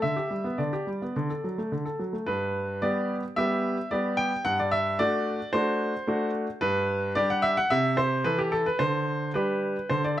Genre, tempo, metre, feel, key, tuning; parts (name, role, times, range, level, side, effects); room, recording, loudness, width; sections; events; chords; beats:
classical-period piano sonatina; 110 BPM; 4/4; straight; G major; A4 = 440 Hz
clear baby grand piano; solo; 0.0-10.2 s; G2 to G5; -24 LUFS; equal
light reverb; close, detailed microphones; -24 LUFS; side -12 dB against mid
0.0-2.3 A section; 2.3-10.2 B section
0.0 G/D; 1.1 D; 2.3 G; 4.5 D7/G; 6.6 G; 7.7 Am/C; 8.8 G/D
| 0.02 0.58 1.15 1.71 | 2.27 2.82 3.37 3.91 | 4.45 5.00 5.54 6.07 | 6.61 7.15 7.70 8.24 | 8.79 9.35 9.91